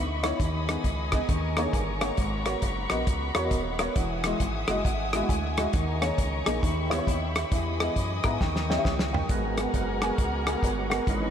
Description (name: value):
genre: uptempo gospel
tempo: 135 BPM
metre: 4/4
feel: swing 64% on 8ths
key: G# minor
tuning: A4 = 444 Hz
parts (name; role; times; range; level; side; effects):
- warm studio string section; sustained chords; 0.0-11.3 s; C#5 to D#6; -35 LUFS; left 2 dB; none
- round analog bass; bass; 0.0-11.3 s; D#1 to G#2; -32 LUFS; equal; none
- warm upright piano; accompaniment; 0.2-11.3 s; G#2 to D#6; -29 LUFS; equal; wide subtle chorus
- warm soul drum kit; drums; 0.2-11.2 s; hi-hat, kick drum, rim click, snare drum, toms; -28 LUFS; equal; none
- percussive tonewheel organ; sustained chords; 9.3-11.3 s; E3 to F#5; -31 LUFS; right 4 dB; slow rotary speaker, overdrive, chorus vibrato
room: moderate huge ambient reverb, RT60 3.9 s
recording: dreamy mix soaked in reverb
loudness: -24 LUFS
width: side -8 dB against mid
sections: 0.0-11.3 A section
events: upright piano fill 1.3-2.2, 4.4-5.7, 8.0-9.3; drum fill 8.4-9.3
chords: 0.4 G#m/D#; 1.3 D#7sus4; 2.2 G#m11; 4.0 Emaj9; 5.7 D#7sus4; 6.6 D#7b9b13; 7.5 Emaj7; 8.4 D#7b9; 9.3 G#m9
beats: | 0.40 0.84 1.29 1.74 | 2.18 2.63 3.07 3.52 | 3.96 4.41 4.85 5.30 | 5.74 6.19 6.63 7.08 | 7.52 7.96 8.41 8.85 | 9.30 9.74 10.19 10.63 | 11.07